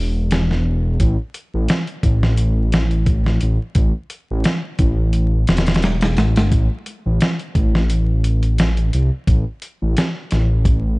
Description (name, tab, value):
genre	trip hop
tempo	87 BPM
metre	4/4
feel	swing 54% on 16ths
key	A minor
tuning	A4 = 440 Hz
part	dark detuned saw bass	bass	0.0-11.0 s	E1 to C2	-17 LUFS	equal	none
part	dusty soul sampler-style drum kit	drums	0.3-10.8 s	hi-hat, kick drum, snare drum	-18 LUFS	equal	studio ambience
room	digital ambience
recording	dark, warm production, vinyl crackle, nothing above 10.4 kHz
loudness	-16 LUFS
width	side -24 dB against mid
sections	0.0-11.0 A section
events	none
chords	none